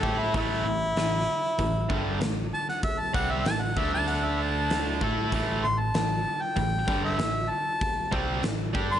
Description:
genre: blues rock power trio and southern rock.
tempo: 96 BPM.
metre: 4/4.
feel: straight.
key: unclear.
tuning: A4 = 436 Hz.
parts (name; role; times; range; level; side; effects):
clear harmonica; melody; 0.0-9.0 s; E4 to C6; -28 LUFS; equal; overdrive.
overdriven electric guitar; riff; 0.0-9.0 s; G2 to A4; -29 LUFS; right 1 dB; none.
overdriven picked electric bass; bass; 0.0-9.0 s; G1 to A2; -32 LUFS; equal; none.
huge arena drum kit; drums; 0.0-8.9 s; hi-hat, kick drum, snare drum; -31 LUFS; equal; none.
room: moderate large studio reverb, RT60 1.2 s, small room reverb.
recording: nothing above 10.9 kHz.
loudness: -24 LUFS.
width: side -10 dB against mid.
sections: 0.0-9.0 A section.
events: none.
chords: 0.0 A5; 3.8 D5; 5.0 A5.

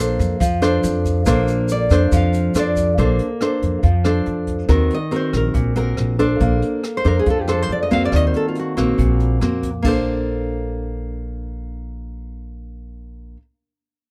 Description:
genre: bossa nova.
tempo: 140 BPM.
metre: 4/4.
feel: straight.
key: Bb major.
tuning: A4 = 440 Hz.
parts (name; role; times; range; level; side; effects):
nylon-string guitar; accompaniment; 0.0-13.4 s; Bb2 to C5; -22 LUFS; equal; none.
upright bass; bass; 0.0-13.3 s; Bb1 to F2; -23 LUFS; equal; none.
tube shaker; percussion; 0.0-3.0 s; none; -39 LUFS; equal; none.
jazz brush drum kit; drums; 0.2-9.9 s; crash cymbal, hi-hat, kick drum, rim click; -27 LUFS; equal; none.
nylon-string guitar; melody; 1.7-9.4 s; F4 to F5; -25 LUFS; equal; none.
room: small room ambience.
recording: dry, close 1970s-style studio recording.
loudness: -19 LUFS.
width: mono.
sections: 0.0-3.0 A section; 3.0-9.8 B section; 9.8-13.3 C section.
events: nylon-string guitar solo 0.0-3.0, 3.0-9.8.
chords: 0.0 Bbmaj9; 4.7 Ebm6; 6.4 Bbmaj9; 8.1 Ebm6; 9.8 Bbmaj9.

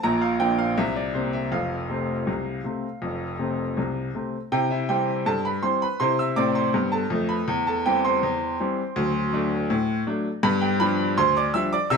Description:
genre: ragtime piano.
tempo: 81 BPM.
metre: 2/4.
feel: straight.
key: F major, C major from 4.5 s.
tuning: A4 = 442 Hz.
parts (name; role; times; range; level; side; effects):
bright baby grand piano; solo; 0.0-12.0 s; F1 to E6; -22 LUFS; equal; none.
room: moderate studio reverb, RT60 0.8 s.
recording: band playing live in one room.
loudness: -22 LUFS.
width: side -5 dB against mid.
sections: 0.0-4.5 A section; 4.5-12.0 B section.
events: none.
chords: 0.0 Bb; 0.8 C9; 1.5 F; 4.5 C; 7.5 C/E; 9.0 D7; 10.4 G7.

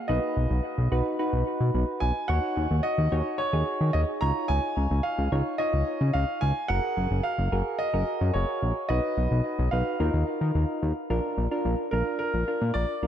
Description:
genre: synth-pop.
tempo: 109 BPM.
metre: 4/4.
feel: straight.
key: Eb minor.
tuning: A4 = 440 Hz.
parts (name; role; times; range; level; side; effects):
warm concert grand piano; melody; 0.0-13.1 s; Bb4 to Bb5; -30 LUFS; equal; analog delay.
soft electric-piano-like synth keys; accompaniment; 0.1-13.1 s; D4 to Db5; -30 LUFS; right 1 dB; chorus, analog delay.
fat analog bass; bass; 0.1-13.1 s; Gb1 to Eb3; -25 LUFS; equal; none.
room: light reverb.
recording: echo-heavy mix.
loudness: -24 LUFS.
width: side -10 dB against mid.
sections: 0.0-11.1 A section; 11.1-13.1 B section.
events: none.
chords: 0.1 B; 2.3 Ebm7; 4.2 Dbadd9; 6.7 Gbadd9; 8.9 B; 10.0 Ebsus2; 11.1 Bb.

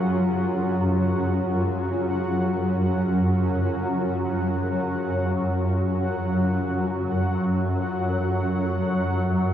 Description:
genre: dark ambient drone.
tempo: free time.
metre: none.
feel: none.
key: F# harmonic minor.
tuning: A4 = 440 Hz.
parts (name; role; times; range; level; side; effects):
granular cloud pad; sustained chords; 0.0-9.5 s; C#4 to A4; -29 LUFS; equal; built-in reverb.
swarming drone; drone; 0.0-9.5 s; F#2 to F#3; -23 LUFS; equal; built-in reverb, phaser.
bubbling stepped-filter texture; texture; 0.0-9.5 s; F#3 to F#5; -33 LUFS; right 1 dB; chorus, built-in reverb.
room: wet huge ambient reverb, RT60 7.7 s.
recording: cassette tape.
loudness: -22 LUFS.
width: side -10 dB against mid.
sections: 0.0-9.5 A section.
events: none.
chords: 0.0 F#5.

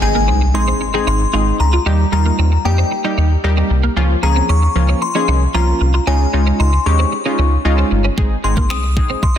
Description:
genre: dance-pop.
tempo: 114 BPM.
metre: 4/4.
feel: straight.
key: Ab major.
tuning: A4 = 439 Hz.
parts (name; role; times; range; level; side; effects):
glassy synth bell; melody; 0.0-9.4 s; G5 to Eb6; -21 LUFS; left 6 dB; chorus, ping-pong delay.
funky polysynth comp; accompaniment; 0.0-9.4 s; F3 to Ab4; -19 LUFS; right 1 dB; chorus, sidechain pumping.
twelve-string electric guitar; riff; 0.0-9.4 s; Ab3 to F4; -24 LUFS; right 4 dB; ensemble chorus.
round analog bass; bass; 0.0-9.2 s; G1 to F2; -15 LUFS; equal; sidechain pumping.
impact; sound effects; 0.0-1.9 s; none; -26 LUFS; equal; none.
pop drum kit; drums; 8.2-9.4 s; finger snaps, kick drum; -16 LUFS; equal; soft clipping on snare.
room: light reverb, digital ambience.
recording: dense, heavily limited modern master.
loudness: -13 LUFS.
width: side -10 dB against mid.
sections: 0.0-9.4 A section.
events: impact 0.0-1.9.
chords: 0.0 Ab; 1.9 Eb; 4.0 Bbm/Db; 6.1 Dbadd9; 8.2 Ab.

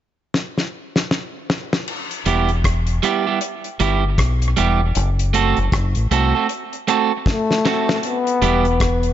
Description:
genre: dub reggae.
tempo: 78 BPM.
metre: 4/4.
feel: swing 60% on 16ths.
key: E minor.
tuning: A4 = 440 Hz.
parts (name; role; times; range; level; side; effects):
damped 70s drum kit; drums; 0.3-9.1 s; crash cymbal, hi-hat, kick drum, rim click, snare drum; -22 LUFS; left 1 dB; none.
electric guitar at the edge of break-up; accompaniment; 2.3-8.7 s; G3 to A4; -20 LUFS; right 8 dB; tape echo.
deep dub fingered electric bass; bass; 2.3-9.1 s; E1 to C2; -18 LUFS; left 1 dB; none.
breathy trombone; melody; 7.3-9.1 s; A3 to B3; -19 LUFS; left 4 dB; tape echo.
room: small room reverb.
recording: nothing above 7.7 kHz.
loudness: -17 LUFS.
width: side -11 dB against mid.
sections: 0.0-1.9 A section; 1.9-8.0 B section; 8.0-9.1 C section.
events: drum fill 0.3-1.9, 7.3-8.0.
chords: 0.0 N.C.; 1.9 Em; 5.0 F#dim; 8.0 Em.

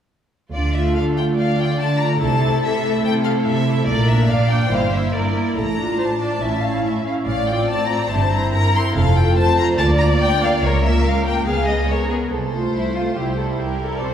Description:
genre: quick classical-period movement for string orchestra.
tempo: 143 BPM.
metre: 4/4.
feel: straight.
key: D minor, F major from 7.3 s.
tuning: A4 = 439 Hz.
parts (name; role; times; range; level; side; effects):
clear chamber violin section; melody; 0.5-14.1 s; Ab4 to C6; -24 LUFS; left 3 dB; none.
rich chamber violin section; second line; 0.5-14.1 s; E4 to F5; -24 LUFS; left 2 dB; none.
clear chamber double bass section; bass; 0.5-14.1 s; F1 to D2; -22 LUFS; right 1 dB; none.
rich studio cello section; bass; 0.5-14.1 s; C2 to D3; -22 LUFS; right 1 dB; none.
rich studio viola section; accompaniment; 0.7-14.1 s; G3 to Ab4; -22 LUFS; right 1 dB; none.
room: wet scoring stage reverb, RT60 1.7 s.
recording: heard from further back in the room.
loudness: -16 LUFS.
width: side -9 dB against mid.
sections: 0.5-14.0 A section.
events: none.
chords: 0.5 Dm; 2.2 Am/C; 3.9 Bb; 4.7 Em7b5/G; 5.6 Dm/A; 6.4 A; 7.3 F/A; 8.1 C7/G; 9.0 F; 9.8 Bb/D; 10.6 Bbm/Db; 11.5 Db5; 12.3 F/C; 13.2 C.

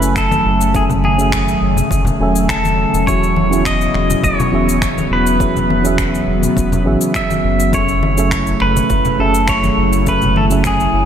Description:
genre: sunset chillout.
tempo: 103 BPM.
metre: 4/4.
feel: straight.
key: unclear.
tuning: A4 = 441 Hz.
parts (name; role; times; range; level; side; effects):
pedal steel guitar; melody; 0.0-11.1 s; G#4 to E5; -18 LUFS; right 1 dB; diffuse ambient delay, shimmer reverb.
mellow FM electric piano; accompaniment; 0.0-11.1 s; E3 to G#5; -20 LUFS; moving between left 5 dB and right 3 dB; chorus, auto-pan, diffuse ambient delay, shimmer reverb.
airy breathy pad; sustained chords; 0.0-11.1 s; C#3 to E4; -19 LUFS; right 1 dB; chorus.
round analog bass; bass; 0.0-11.1 s; E1 to G#1; -19 LUFS; equal; none.
electronic shaker and finger snaps; drums; 0.0-10.9 s; none; -24 LUFS; left 2 dB; small room ambience.
electronic kick drum; drums; 0.2-10.8 s; none; -23 LUFS; equal; overdrive, small room ambience.
congas; percussion; 0.3-10.5 s; none; -23 LUFS; left 3 dB; none.
room: moderate plate reverb, RT60 2.3 s.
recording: dreamy mix soaked in reverb.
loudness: -12 LUFS.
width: side -9 dB against mid.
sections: 0.0-11.1 A section.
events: none.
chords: 0.0 F#m9; 3.1 E69; 7.7 F#m9.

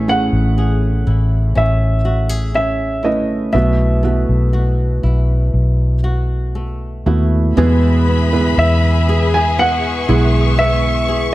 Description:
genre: pop ballad.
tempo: 60 BPM.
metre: 4/4.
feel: straight.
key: E major.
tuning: A4 = 438 Hz.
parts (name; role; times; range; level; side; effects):
felt-muted upright piano; accompaniment; 0.0-11.3 s; A2 to B4; -20 LUFS; right 3 dB; none.
flamenco guitar; arpeggios; 0.0-11.3 s; B2 to G#4; -24 LUFS; left 2 dB; none.
vintage muted fingered electric bass; bass; 0.0-11.3 s; A1 to E2; -15 LUFS; equal; none.
dark baby grand piano; melody; 0.1-11.3 s; D#5 to G#5; -19 LUFS; right 1 dB; tape echo.
warm studio string section; sustained chords; 7.6-11.3 s; G#4 to C#6; -22 LUFS; left 3 dB; none.
room: studio reverb.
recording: none.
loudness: -13 LUFS.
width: side -16 dB against mid.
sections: 0.0-7.6 A section; 7.6-11.3 B section.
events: none.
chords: 0.0 Amaj7; 3.5 B7sus4; 7.6 E.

